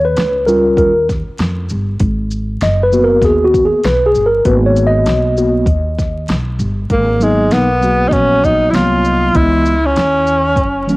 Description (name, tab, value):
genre	hip hop, jazz-hop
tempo	98 BPM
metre	4/4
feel	swing 62% on 16ths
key	G# dorian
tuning	A4 = 442 Hz
part	mellow tine electric piano	accompaniment	0.0-11.0 s	E3 to D#5	-13 LUFS	equal	medium stereo tremolo, cassette tape
part	upright bass	bass	0.0-11.0 s	F#1 to E#2	-18 LUFS	equal	none
part	deep house drum kit	drums	0.2-11.0 s	hi-hat, kick drum, shaker, snare drum	-19 LUFS	equal	cassette tape
part	breathy tenor saxophone	melody	6.9-11.0 s	G#3 to E#4	-13 LUFS	equal	cassette tape, tape echo
room	moderate spring reverb, RT60 2.4 s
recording	home recording on cassette, vinyl crackle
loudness	-11 LUFS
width	side -21 dB against mid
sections	0.0-6.9 A section; 6.9-11.0 B section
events	tine electric piano solo 0.0-6.9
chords	0.0 D#7; 2.0 G#m7; 9.4 C#m9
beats	0.17 0.78 1.39 | 2.01 2.62 3.23 3.84 | 4.46 5.07 5.68 6.29 | 6.90 7.52 8.13 8.74 | 9.35 9.97 10.58